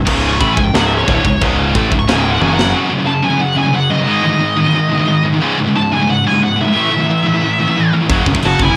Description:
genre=heavy metal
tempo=180 BPM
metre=4/4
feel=straight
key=C# minor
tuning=A4 = 438 Hz
part: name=scooped high-gain guitar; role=riff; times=0.0-8.8 s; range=C#2 to A3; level=-18 LUFS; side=equal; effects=distortion, cassette tape
part: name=scooped high-gain guitar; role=riff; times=0.0-8.8 s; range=C#2 to A3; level=-20 LUFS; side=equal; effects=distortion, cassette tape
part: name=growling fingered electric bass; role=bass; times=0.0-2.7, 8.1-8.7 s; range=C#1 to A1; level=-21 LUFS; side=equal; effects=overdrive
part: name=tight metal drum kit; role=drums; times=0.1-2.7, 8.1-8.7 s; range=china cymbal, crash cymbal, kick drum, snare drum, toms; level=-20 LUFS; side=equal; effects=cassette tape
part: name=high-gain lead guitar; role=melody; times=0.3-8.8 s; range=C#5 to C#6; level=-20 LUFS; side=equal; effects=distortion, cassette tape
part: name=high-gain lead guitar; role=second line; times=8.5-8.8 s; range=E4 to F#4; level=-19 LUFS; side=equal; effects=distortion, cassette tape
room=little or no reverb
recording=home recording on cassette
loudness=-14 LUFS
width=mono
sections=0.0-2.8 A section; 2.8-8.8 B section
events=lead electric guitar solo 0.0-2.8; drum fill 2.4-2.8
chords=0.0 C#m; 2.4 F#5; 4.1 G#5; 5.4 C#5; 6.8 A5; 8.1 F#5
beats=| 0.07 0.41 0.74 1.08 | 1.41 1.75 2.08 2.42 | 2.75 3.08 3.42 3.75 | 4.09 4.42 4.76 5.09 | 5.42 5.76 6.09 6.43 | 6.76 7.09 7.43 7.76 | 8.10 8.43 8.76

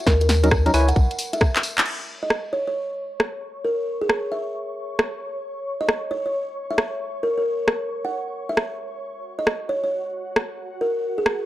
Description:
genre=UK garage, two-step garage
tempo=134 BPM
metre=4/4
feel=swing 65% on 16ths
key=unclear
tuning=A4 = 440 Hz
part: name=buzzing kalimba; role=melody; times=0.0-11.3 s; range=G#4 to F#5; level=-26 LUFS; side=equal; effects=none
part: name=soft dub sub bass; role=bass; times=0.1-1.1 s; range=B1 to D#2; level=-19 LUFS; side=equal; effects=none
part: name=electronic kick drum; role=drums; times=0.1-1.5 s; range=none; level=-19 LUFS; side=equal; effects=small room ambience
part: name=garage drum kit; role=drums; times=0.1-11.4 s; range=claves, crash cymbal, handclaps, hi-hat, rim click, snare drum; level=-21 LUFS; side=equal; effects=small room ambience
part: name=tambourine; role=percussion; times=0.1-1.8 s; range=none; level=-36 LUFS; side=left 3 dB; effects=none
part: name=percussive organ stab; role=stabs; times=0.4-0.9 s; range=F#3 to G#5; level=-22 LUFS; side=equal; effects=chorus
part: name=ethereal airy pad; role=sustained chords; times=2.7-11.5 s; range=F#4 to C#6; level=-34 LUFS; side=left 1 dB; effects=ensemble chorus, built-in reverb, sidechain pumping
room=light reverb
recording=dry, gritty hardware recording, transformer saturation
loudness=-21 LUFS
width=side -14 dB against mid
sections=0.0-1.9 A section; 1.9-11.5 B section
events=drum fill 1.5-1.9; band accent 1.7; filter sweep on ambient pad 1.9-11.5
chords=0.1 D#m7; 0.7 C#m7; 1.9 N.C.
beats=| 0.07 0.51 0.96 1.41 | 1.86 2.30 2.75 3.20 | 3.65 4.09 4.54 4.99 | 5.44 5.89 6.33 6.78 | 7.23 7.68 8.12 8.57 | 9.02 9.47 9.91 10.36 | 10.81 11.26

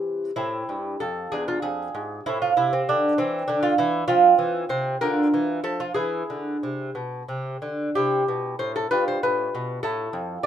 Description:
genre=classical, baroque-style dance for lute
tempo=57-67 BPM (dotted quarters)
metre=6/8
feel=rubato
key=A minor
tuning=A4 = 444 Hz
part: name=lute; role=solo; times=0.0-10.5 s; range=E2 to D5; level=-22 LUFS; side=right 1 dB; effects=none
room=moderate studio reverb, RT60 0.5 s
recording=minimal, uncompressed stereo recording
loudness=-22 LUFS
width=side -10 dB against mid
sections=0.4-10.5 A section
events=none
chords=0.4 Am; 1.3 E7; 2.3 Am; 4.1 F5; 5.0 Bb/D; 6.0 E; 8.0 C; 8.9 G7; 9.8 A5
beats=| 0.36 1.33 | 2.27 3.17 | 4.08 5.01 | 5.97 6.96 | 7.96 8.92 | 9.84

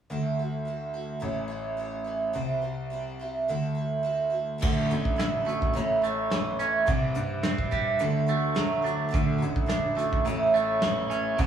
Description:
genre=folk rock and heartland rock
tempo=106 BPM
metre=4/4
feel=straight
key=D major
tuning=A4 = 440 Hz
part: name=picked twelve-string acoustic guitar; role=accompaniment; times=0.1-11.5 s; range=A2 to C#5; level=-29 LUFS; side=right 3 dB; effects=none
part: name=clear grand piano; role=bass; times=0.1-11.5 s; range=A1 to G2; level=-31 LUFS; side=left 1 dB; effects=none
part: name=twangy electric guitar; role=riff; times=4.6-11.5 s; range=A2 to E4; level=-29 LUFS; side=right 3 dB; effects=none
part: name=soft brush drum kit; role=drums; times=4.6-11.5 s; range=crash cymbal, hi-hat, kick drum, snare drum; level=-29 LUFS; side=right 1 dB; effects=none
room=wet stone room reverb, RT60 1.2 s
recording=band playing live in one room, small room ambience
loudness=-25 LUFS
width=side -9 dB against mid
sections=0.1-4.6 A section; 4.6-11.5 B section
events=none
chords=0.1 Dadd9; 1.2 A; 2.4 C; 3.5 Dadd9; 5.8 A; 6.9 C; 8.0 Dadd9; 10.3 A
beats=| 0.11 0.67 1.24 1.80 | 2.37 2.93 3.50 4.06 | 4.63 5.19 5.76 6.32 | 6.88 7.45 8.01 8.57 | 9.14 9.70 10.26 10.83 | 11.39

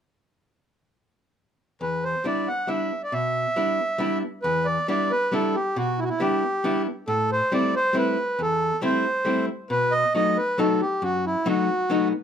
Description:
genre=musette waltz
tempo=137 BPM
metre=3/4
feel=straight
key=E minor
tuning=A4 = 438 Hz
part: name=accordion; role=melody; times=1.8-12.1 s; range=E4 to F#5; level=-23 LUFS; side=right 1 dB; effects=none
part: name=archtop guitar, miked and amplified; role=accompaniment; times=1.8-12.1 s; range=E2 to E4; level=-26 LUFS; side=left 2 dB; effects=none
room=moderate small room reverb, RT60 0.5 s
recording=none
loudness=-21 LUFS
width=side -8 dB against mid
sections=1.8-4.4 A section; 4.4-12.2 B section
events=none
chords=1.8 Em7; 7.1 Am7; 9.7 B7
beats=| 1.81 2.25 2.69 | 3.13 3.57 4.00 | 4.44 4.89 5.33 | 5.77 6.20 6.64 | 7.08 7.51 7.95 | 8.38 8.82 9.26 | 9.70 10.14 10.58 | 11.02 11.46 11.89

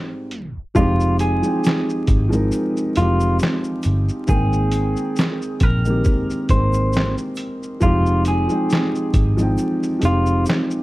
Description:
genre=lo-fi hip hop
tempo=68 BPM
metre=4/4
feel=swing 56% on 16ths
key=F minor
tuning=A4 = 440 Hz
part: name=felt-muted upright piano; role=accompaniment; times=0.0-10.8 s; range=Eb3 to G5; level=-21 LUFS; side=equal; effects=cassette tape, low-pass filter
part: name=trip hop sampler-style drum kit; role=drums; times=0.3-10.8 s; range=handclaps, hi-hat, kick drum, shaker, snare drum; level=-20 LUFS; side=equal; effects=none
part: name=electric guitar through a small old amp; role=melody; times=0.8-10.4 s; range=F4 to C5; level=-25 LUFS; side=right 1 dB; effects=low-pass filter, tape echo
part: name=vintage muted picked electric bass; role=bass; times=0.8-10.4 s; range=F1 to Bb1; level=-20 LUFS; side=equal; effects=none
part: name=egg shaker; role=percussion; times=0.8-10.7 s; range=none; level=-47 LUFS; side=right 7 dB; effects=none
room=moderate studio reverb, RT60 0.6 s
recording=dark, warm production, vinyl crackle, tape stop, faint mains hum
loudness=-16 LUFS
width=side -18 dB against mid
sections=0.8-10.8 A section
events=tape stop 0.3-0.8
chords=0.0 Abmaj7; 0.8 Fm9; 4.3 Abmaj9; 7.8 Fm9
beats=| 0.76 1.64 2.52 3.41 | 4.29 5.17 6.05 6.94 | 7.82 8.70 9.58 10.46

